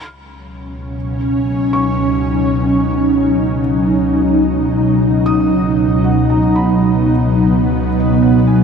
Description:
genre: ambient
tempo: 77 BPM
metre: 4/4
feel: straight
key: unclear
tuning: A4 = 440 Hz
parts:
  - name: ethereal airy pad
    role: sustained chords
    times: 0.7-8.6 s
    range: C#2 to D#4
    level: -12 LUFS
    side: equal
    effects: ensemble chorus, built-in reverb
  - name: felt-muted upright piano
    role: arpeggios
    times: 1.7-8.6 s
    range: D#5 to D#6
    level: -26 LUFS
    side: equal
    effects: ping-pong delay
room: wet huge ambient reverb, RT60 7.0 s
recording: none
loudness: -12 LUFS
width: side -6 dB against mid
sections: 0.0-8.6 A section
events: fade-out on felt piano 0.0-8.6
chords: 0.0 B/C#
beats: 0.55 1.34 2.13 | 2.92 3.70 4.48 5.26 | 6.04 6.82 7.59 8.37

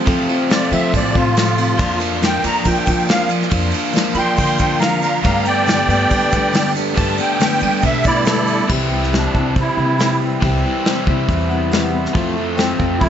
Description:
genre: folk rock and heartland rock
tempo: 139 BPM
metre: 4/4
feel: straight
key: C major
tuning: A4 = 440 Hz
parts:
  - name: picked steel-string acoustic guitar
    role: accompaniment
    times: 0.0-13.1 s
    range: G2 to B4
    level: -23 LUFS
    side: left 6 dB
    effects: none
  - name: tonewheel organ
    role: sustained chords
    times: 0.0-13.1 s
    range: G3 to D5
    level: -29 LUFS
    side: right 1 dB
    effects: none
  - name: overdriven electric guitar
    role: riff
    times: 0.0-13.1 s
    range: F2 to G4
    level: -22 LUFS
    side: right 1 dB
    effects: none
  - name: upright bass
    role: bass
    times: 0.1-13.1 s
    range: C2 to G3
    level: -22 LUFS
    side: equal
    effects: none
  - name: soft brush drum kit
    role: drums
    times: 0.1-13.1 s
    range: crash cymbal, hi-hat, kick drum, ride cymbal, snare drum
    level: -20 LUFS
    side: equal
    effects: none
  - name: musette accordion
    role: melody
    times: 0.5-13.1 s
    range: A3 to C6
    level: -20 LUFS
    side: right 1 dB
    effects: plate reverb, tape echo
  - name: tube shaker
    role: percussion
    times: 1.8-8.6 s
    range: none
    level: -39 LUFS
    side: right 20 dB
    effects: none
room: light reverb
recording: nothing above 7.8 kHz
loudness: -14 LUFS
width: side -9 dB against mid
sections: 0.0-8.7 A section; 8.7-13.1 B section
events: accordion solo 0.0-8.7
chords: 0.0 F; 1.8 Bb/F; 5.2 Gadd9; 8.7 C; 12.2 F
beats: | 0.07 0.50 0.93 1.36 | 1.80 2.23 2.66 3.09 | 3.52 3.95 4.38 4.82 | 5.25 5.68 6.11 6.54 | 6.97 7.40 7.83 8.27 | 8.70 9.13 9.56 9.99 | 10.42 10.86 11.29 11.72 | 12.15 12.58 13.01

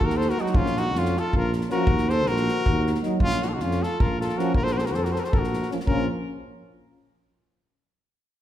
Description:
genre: balkan folk, Balkan brass band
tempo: 315 BPM (eighths)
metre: 7/8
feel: straight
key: Bb harmonic minor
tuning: A4 = 440 Hz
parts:
  - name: clear trumpet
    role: melody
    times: 0.0-6.1 s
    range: F4 to C5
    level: -28 LUFS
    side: right 1 dB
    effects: none
  - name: warm flugelhorn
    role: second line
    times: 0.0-6.1 s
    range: Db4 to A4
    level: -29 LUFS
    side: left 6 dB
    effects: none
  - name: dark tuba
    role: bass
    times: 0.0-6.1 s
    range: Bb1 to F2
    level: -27 LUFS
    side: right 1 dB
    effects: none
  - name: unplugged drum kit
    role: percussion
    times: 0.0-6.1 s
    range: kick drum, snare drum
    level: -27 LUFS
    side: equal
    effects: none
  - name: mellow euphonium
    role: accompaniment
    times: 0.4-6.1 s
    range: F3 to Gb3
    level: -32 LUFS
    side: right 6 dB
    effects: none
  - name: warm trombone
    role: accompaniment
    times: 0.4-6.1 s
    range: Db4 to Eb4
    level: -32 LUFS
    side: left 6 dB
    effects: none
room: moderate recital hall reverb, RT60 1.6 s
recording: recorded in a church or concert hall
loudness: -21 LUFS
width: side -12 dB against mid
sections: 0.0-5.9 A section; 5.9-7.2 B section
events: none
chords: 0.0 Bb5; 5.9 Bbm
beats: 0.17 0.36 | 0.55 0.74 0.93 1.12 1.31 1.50 1.69 | 1.88 2.08 2.27 2.46 2.65 2.84 3.03 | 3.22 3.41 3.60 3.79 3.98 4.17 4.36 | 4.55 4.74 4.93 5.12 5.31 5.50 5.69 | 5.88 6.08

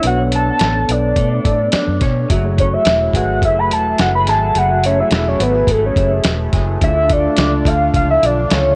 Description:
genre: indie pop, bedroom pop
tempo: 106 BPM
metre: 4/4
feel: straight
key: unclear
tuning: A4 = 437 Hz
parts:
  - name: soft octave-layered synth lead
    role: melody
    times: 0.0-8.8 s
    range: A4 to B5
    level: -19 LUFS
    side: equal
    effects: phaser, lush chorus, tape echo
  - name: electric guitar through a small old amp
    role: accompaniment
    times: 0.0-8.8 s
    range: B2 to C#5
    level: -27 LUFS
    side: equal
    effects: subtle chorus, vibrato effect
  - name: mellow tine electric piano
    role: accompaniment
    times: 0.0-8.8 s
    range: A3 to F5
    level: -27 LUFS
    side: equal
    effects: cassette tape
  - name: vintage muted fingered electric bass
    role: bass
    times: 0.0-8.7 s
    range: E1 to B2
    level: -21 LUFS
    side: equal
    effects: none
  - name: dusty soul sampler-style drum kit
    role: drums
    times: 0.0-8.6 s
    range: hi-hat, kick drum, snare drum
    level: -20 LUFS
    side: equal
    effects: none
  - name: phased analog pad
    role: sustained chords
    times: 2.3-8.8 s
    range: D3 to G#4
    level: -28 LUFS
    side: equal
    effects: phaser, chorus
room: light reverb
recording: worn, warbling old tape, cassette tape, warbly pitch drift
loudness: -15 LUFS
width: mono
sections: 0.0-8.8 A section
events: soft synth lead solo 0.0-8.8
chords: 0.0 Bm9; 2.3 F#m9; 6.8 Dm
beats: | 0.04 0.60 1.17 1.73 | 2.30 2.86 3.43 3.99 | 4.56 5.12 5.69 6.25 | 6.82 7.38 7.95 8.51

